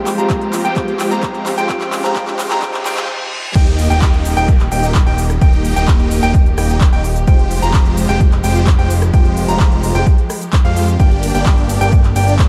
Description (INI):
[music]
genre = EDM, festival progressive house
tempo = 129 BPM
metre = 4/4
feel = straight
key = Eb major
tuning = A4 = 439 Hz
[part]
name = warm concert grand piano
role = accompaniment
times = 0.0-3.1 s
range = Ab3 to G4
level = -26 LUFS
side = equal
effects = sidechain pumping, dub echo
[part]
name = clear studio string section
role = sustained chords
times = 0.0-12.5 s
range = D3 to G4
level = -30 LUFS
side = equal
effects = none
[part]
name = bright grand piano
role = arpeggios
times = 0.0-12.4 s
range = F5 to Bb5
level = -25 LUFS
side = equal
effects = sidechain pumping, low-pass filter, dub echo
[part]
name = supersaw chords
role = riff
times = 0.0-12.4 s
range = Ab3 to Bb5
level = -23 LUFS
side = equal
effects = phaser, sidechain pumping, low-pass filter, dub echo
[part]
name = riser, reverse cymbal and downlifter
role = sound effects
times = 0.8-7.3 s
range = none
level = -32 LUFS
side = equal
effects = none
[part]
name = big-room dance drum kit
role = drums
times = 0.1-12.5 s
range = crash cymbal, handclaps, hi-hat, ride cymbal, rim click, shaker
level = -27 LUFS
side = equal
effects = none
[part]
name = electronic kick drum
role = drums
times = 0.3-12.5 s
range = none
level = -14 LUFS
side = equal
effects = none
[part]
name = fat analog bass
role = bass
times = 3.6-12.5 s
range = Eb1 to F2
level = -19 LUFS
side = equal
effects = sidechain pumping
[sound]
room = light reverb, digital ambience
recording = dark, warm production, high-pass filter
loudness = -14 LUFS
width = mono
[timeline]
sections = 0.0-3.6 A section; 3.6-12.5 B section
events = build-up 0.0-3.6; drum fill 0.0-3.1; filter sweep on supersaw synth 0.0-3.6; filter sweep on string section 0.0-3.6; filter sweep 0.0-3.6; reverse cymbal 2.6-3.6; drop 3.6-12.5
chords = 0.0 Fmadd9; 3.6 Eb; 7.3 Fmadd9; 11.0 Gm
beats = 0.30 0.76 1.23 | 1.69 2.16 2.62 3.09 | 3.55 4.02 4.49 4.95 | 5.42 5.88 6.34 6.81 | 7.28 7.74 8.21 8.67 | 9.14 9.60 10.07 10.53 | 11.00 11.46 11.93 12.39